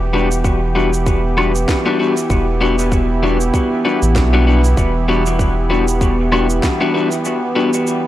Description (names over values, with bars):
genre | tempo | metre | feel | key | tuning
ambient dub | 97 BPM | 4/4 | swing 57% on 16ths | E minor | A4 = 439 Hz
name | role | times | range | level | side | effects
warm analog pad | sustained chords | 0.0-8.1 s | E3 to G4 | -19 LUFS | right 2 dB | chorus
warm sub bass | bass | 0.0-6.6 s | E1 to B1 | -17 LUFS | equal | none
electric guitar at the edge of break-up | stabs | 0.1-7.7 s | G3 to F#4 | -18 LUFS | left 4 dB | dub echo
electronic shaker, woodblock and snare drum | drums | 0.3-8.0 s | none | -26 LUFS | right 2 dB | dub echo
electronic kick drum | drums | 0.4-6.8 s | none | -18 LUFS | equal | none
room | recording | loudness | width
light reverb | none | -13 LUFS | side -13 dB against mid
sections
0.0-8.1 A section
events
none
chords
0.0 Em9